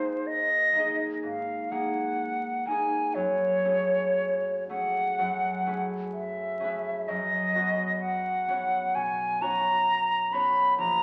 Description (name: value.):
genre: classical, impressionist duo for flute and harp.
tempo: 56-66 BPM.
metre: 4/4.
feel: rubato.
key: unclear.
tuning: A4 = 441 Hz.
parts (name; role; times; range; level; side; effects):
bright concert flute; melody; 0.0-11.0 s; C5 to B5; -28 LUFS; equal; none.
concert harp; accompaniment; 0.0-11.0 s; Bb1 to C#5; -36 LUFS; equal; none.
room: wet recital hall reverb, RT60 1.5 s.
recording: very old 78 rpm record, vinyl crackle.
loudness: -27 LUFS.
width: mono.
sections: 0.0-11.0 A section.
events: none.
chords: 0.0 Absus2/Eb; 3.1 Gbmadd9; 5.2 Amaj9/Gb; 7.1 Badd9/F#.